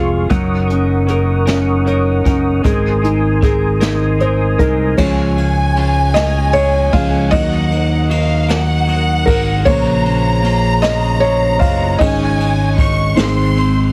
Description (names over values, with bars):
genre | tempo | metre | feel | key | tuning
six-eight pop ballad | 51 BPM (dotted quarters) | 6/8 | straight | Db major | A4 = 440 Hz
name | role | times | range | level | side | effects
felt-muted upright piano | accompaniment | 0.0-13.9 s | Db3 to F5 | -20 LUFS | equal | none
percussive tonewheel organ | sustained chords | 0.0-5.0 s | Ab4 to Eb6 | -23 LUFS | equal | chorus vibrato, slow rotary speaker
clean electric guitar | arpeggios | 0.0-13.9 s | Ab2 to Db5 | -26 LUFS | equal | subtle chorus
fingered electric bass | bass | 0.0-13.9 s | F1 to Db2 | -19 LUFS | equal | none
jazz brush drum kit | drums | 0.3-13.7 s | crash cymbal, hi-hat, kick drum, ride cymbal, snare drum | -23 LUFS | equal | none
rich studio violin section | second line | 5.0-13.9 s | F5 to Db6 | -23 LUFS | equal | none
room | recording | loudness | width
little or no reverb | heavily compressed radio sound, multiband compression | -14 LUFS | mono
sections
0.0-5.0 A section; 5.0-13.9 B section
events
felt piano solo 5.0-13.9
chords
0.3 Gb6; 2.6 Abadd9; 5.0 Db; 7.3 Ebm; 9.7 Bbmadd9; 12.0 Absus4; 13.2 Ab